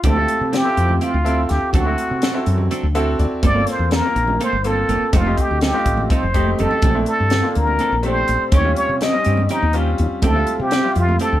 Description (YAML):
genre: electric jazz fusion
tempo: 247 BPM (eighths)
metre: 7/8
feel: straight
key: D minor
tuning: A4 = 441 Hz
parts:
  - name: trumpet with plunger mute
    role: melody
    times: 0.0-11.4 s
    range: Eb4 to Eb5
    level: -20 LUFS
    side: equal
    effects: none
  - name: clean electric guitar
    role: stabs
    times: 0.0-11.4 s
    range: E3 to A4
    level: -26 LUFS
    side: right 4 dB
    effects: none
  - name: woody fretless electric bass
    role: bass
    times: 0.0-11.4 s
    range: F1 to C3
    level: -20 LUFS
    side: equal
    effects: none
  - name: crisp fusion drum kit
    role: drums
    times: 0.0-11.3 s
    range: hi-hat, kick drum, snare drum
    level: -20 LUFS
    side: equal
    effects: none
  - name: congas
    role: percussion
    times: 0.0-11.2 s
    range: none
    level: -27 LUFS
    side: right 4 dB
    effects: none
  - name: bright grand piano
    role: accompaniment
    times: 0.2-11.3 s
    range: G3 to F#5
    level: -24 LUFS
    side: left 1 dB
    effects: none
room: light reverb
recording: band playing live in one room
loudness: -15 LUFS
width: side -13 dB against mid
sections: 0.0-11.4 A section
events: grand piano fill 2.7-3.4; drum fill 6.3-6.8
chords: 0.0 Dm11; 1.7 D7; 3.4 Gm11; 5.1 F9; 6.8 Bbmaj9#11; 8.5 Eb13; 10.2 Dm11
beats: | 0.04 0.29 0.53 0.77 1.01 1.26 1.50 | 1.74 1.98 2.23 2.47 2.71 2.95 3.20 | 3.44 3.68 3.92 4.17 4.41 4.65 4.89 | 5.14 5.38 5.62 5.87 6.11 6.35 6.59 | 6.84 7.08 7.32 7.56 7.81 8.05 8.29 | 8.53 8.78 9.02 9.26 9.50 9.75 9.99 | 10.23 10.47 10.72 10.96 11.20